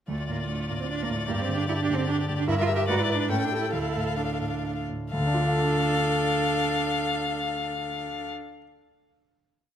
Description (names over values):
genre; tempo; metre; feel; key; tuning
quick classical-period movement for piano quartet; 123-152 BPM; 3/4; straight; D minor; A4 = 440 Hz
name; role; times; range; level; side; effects
rich violin; melody; 0.1-8.3 s; D5 to G5; -30 LUFS; left 6 dB; none
rich cello; second line; 0.1-8.3 s; A3 to G4; -31 LUFS; right 7 dB; none
rich viola; accompaniment; 0.1-8.3 s; F4 to B4; -33 LUFS; right 1 dB; none
warm grand piano; accompaniment; 0.1-8.6 s; D2 to F5; -28 LUFS; equal; none
room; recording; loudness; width
light reverb; close, detailed microphones; -24 LUFS; side -9 dB against mid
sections
0.1-5.1 A section; 5.1-8.0 final chord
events
slowing down 1.9-5.1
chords
0.1 Dm; 1.3 G5; 2.5 Edim/G; 2.9 E7/G#; 3.3 A7; 3.7 Dm